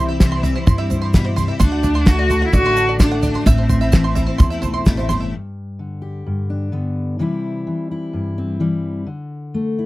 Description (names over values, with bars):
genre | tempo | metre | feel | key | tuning
indie folk with a building arrangement | 129 BPM | 4/4 | straight | unclear | A4 = 441 Hz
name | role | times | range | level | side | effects
warm cello | melody | 0.0-4.9 s | C4 to F#4 | -20 LUFS | equal | none
fingerpicked steel-string acoustic guitar | accompaniment | 0.0-9.9 s | E2 to G4 | -23 LUFS | left 2 dB | none
picked twelve-string acoustic guitar | accompaniment | 0.0-5.3 s | A2 to F#4 | -27 LUFS | left 3 dB | ensemble chorus
bluegrass banjo | arpeggios | 0.0-5.3 s | C5 to C6 | -27 LUFS | right 6 dB | none
upright bass | bass | 0.0-5.3 s | G1 to G2 | -21 LUFS | equal | none
cloth-damped thuddy drum kit | drums | 0.2-5.2 s | kick drum, snare drum, toms | -15 LUFS | equal | none
tube shaker | percussion | 0.2-5.2 s | none | -36 LUFS | right 13 dB | none
room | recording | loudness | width
little or no reverb | dry, close 1970s-style studio recording | -15 LUFS | side -18 dB against mid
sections
0.0-5.3 A section; 5.3-9.9 B section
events
none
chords
0.0 C; 1.6 D; 3.5 Am; 5.3 G; 7.2 C; 9.1 D5